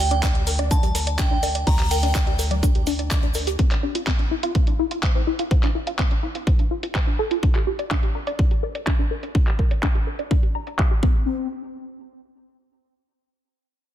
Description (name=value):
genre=progressive house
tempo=125 BPM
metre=4/4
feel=straight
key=unclear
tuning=A4 = 437 Hz
part: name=glassy synth bell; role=melody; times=0.0-2.6 s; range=G5 to Bb5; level=-27 LUFS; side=right 2 dB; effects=chorus, vintage 12-bit sampler grit, sidechain pumping, ping-pong delay
part: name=tight sequenced synth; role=arpeggios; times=0.0-11.5 s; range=C4 to D6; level=-27 LUFS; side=left 2 dB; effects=chorus, phaser, sidechain pumping, ping-pong delay
part: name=tight sequencer bass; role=bass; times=0.0-3.6 s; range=D2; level=-24 LUFS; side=equal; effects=sidechain pumping
part: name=pop drum kit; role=drums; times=0.1-10.9 s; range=handclaps, hi-hat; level=-29 LUFS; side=equal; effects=sidechain pumping on hats, low-pass filter on hats, studio reverb, soft clipping on snare, low-pass filter on snare
part: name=congas and bongos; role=percussion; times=0.1-3.4 s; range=none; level=-34 LUFS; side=left 4 dB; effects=overdrive, sidechain pumping on perc, studio reverb
part: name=damped 70s drum kit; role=drums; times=0.2-3.6 s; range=hi-hat, shaker, snare drum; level=-35 LUFS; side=left 1 dB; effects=sidechain pumping on hats, high-pass filter on hats, studio reverb, high-pass filter on snare, sidechain pumping on perc, high-pass filter on perc, high-pass filter on room
part: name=electronic kick drum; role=drums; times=0.2-11.1 s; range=none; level=-20 LUFS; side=equal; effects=studio reverb
room=studio ambience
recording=dense, heavily limited modern master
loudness=-19 LUFS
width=side -11 dB against mid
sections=0.0-11.3 A section; 11.3-13.9 B section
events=filter sweep on drum 0.0-11.3; filter sweep on synth arpeggio sound 0.0-11.3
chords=0.0 G5/D; 3.6 Dm9; 7.4 Gm/D; 11.0 N.C.